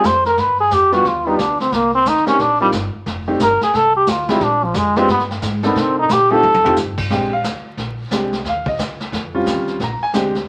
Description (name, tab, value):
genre	jazz, small-group swing and bop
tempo	178 BPM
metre	4/4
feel	swing 63% on 8ths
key	Bb mixolydian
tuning	A4 = 440 Hz
part	trombone with metal mute	melody	0.0-6.8 s	F3 to C5	-16 LUFS	equal	none
part	clear baby grand piano	accompaniment	0.0-10.3 s	G3 to Bb5	-22 LUFS	equal	none
part	upright bass	bass	0.0-10.5 s	F1 to C3	-30 LUFS	equal	none
part	vintage brush drum kit	drums	0.0-10.5 s	brushed snare drum, crash cymbal, hi-hat, kick drum, snare drum, toms	-26 LUFS	equal	none
room	moderate studio reverb, RT60 0.8 s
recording	vinyl crackle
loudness	-17 LUFS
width	mono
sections	0.0-7.1 A section; 7.1-10.5 A section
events	trombone solo 0.0-7.1; drum fill 6.4-6.8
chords	0.4 G7; 1.7 Cm7; 3.1 Fsus2; 4.4 Bb6; 5.1 G5; 5.8 Cm7; 6.4 F9; 7.1 Bb13; 8.4 Eb13; 9.8 Bb13